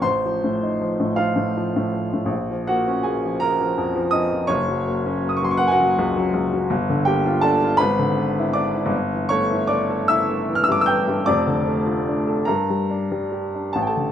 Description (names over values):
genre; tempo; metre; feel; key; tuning
classical, romantic nocturne for solo piano; 47-56 BPM (dotted quarters); 6/8; rubato; unclear; A4 = 438 Hz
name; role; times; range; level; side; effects
warm upright piano; solo; 0.0-14.1 s; F1 to G6; -18 LUFS; equal; none
room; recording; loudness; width
light reverb; dark, warm production; -18 LUFS; side -9 dB against mid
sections
0.0-14.1 A section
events
none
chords
0.1 F7/A; 2.3 Bbm; 4.5 Gb; 6.7 Gm7; 7.8 E7/G#; 8.9 A7/G; 11.3 Dm/F; 12.5 Gm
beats
| 0.05 1.19 | 2.32 3.43 | 4.52 5.61 | 6.70 7.80 | 8.94 10.09 | 11.27 12.47 | 13.74